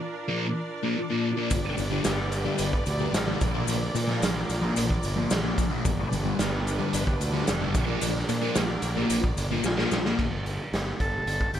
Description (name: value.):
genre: psychedelic rock.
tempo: 110 BPM.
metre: 4/4.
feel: straight.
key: unclear.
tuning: A4 = 440 Hz.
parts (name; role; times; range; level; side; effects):
clear studio string section; sustained chords; 0.0-10.2 s; D4 to D5; -34 LUFS; right 2 dB; none.
thick fuzz guitar; riff; 0.3-10.2 s; G2 to Bb3; -28 LUFS; left 2 dB; distortion, phaser.
fuzz fingered electric bass; bass; 1.5-11.6 s; F1 to Bb2; -30 LUFS; equal; overdrive.
raw garage drum kit; drums; 1.5-11.6 s; crash cymbal, hi-hat, kick drum, snare drum; -28 LUFS; right 1 dB; none.
maracas; percussion; 1.5-10.0 s; none; -37 LUFS; left 15 dB; none.
combo organ; melody; 11.0-11.6 s; G4 to A4; -28 LUFS; equal; slapback echo.
room: light reverb, small room ambience.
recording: none.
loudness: -24 LUFS.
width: side -10 dB against mid.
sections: 0.0-10.2 A section; 10.2-11.6 B section.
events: drum fill 9.6-10.2.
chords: 0.0 Bb; 1.5 G; 3.4 Bb; 5.8 G; 7.7 Bb; 10.2 G5.